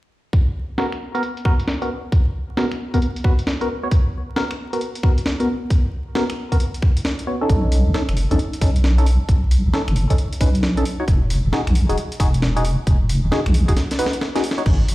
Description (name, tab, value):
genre	UK garage, two-step garage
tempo	134 BPM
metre	4/4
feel	swing 64% on 16ths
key	unclear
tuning	A4 = 441 Hz
part	breakbeat sampler-style drum kit	drums	0.3-14.9 s	crash cymbal, finger snaps, hi-hat, snare drum	-26 LUFS	equal	low-pass filter on hats, low-pass filter on snare, low-pass filter on cymbals
part	electronic kick drum	drums	0.3-14.8 s	none	-16 LUFS	equal	none
part	percussive organ stab	stabs	0.8-14.6 s	B3 to C#5	-24 LUFS	equal	chorus, phaser, ping-pong delay
part	deep soft wobble bass	bass	7.5-14.9 s	E1 to B1	-17 LUFS	equal	chorus, tube saturation, sidechain pumping
room	light reverb, digital ambience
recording	played on a big sound system in a bare room, large studio reverb, vinyl crackle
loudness	-17 LUFS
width	side -18 dB against mid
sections	0.3-14.7 A section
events	break 13.8-14.7; drum fill 13.8-14.7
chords	0.3 Bmaj7(no3); 7.5 B9; 10.9 Emaj9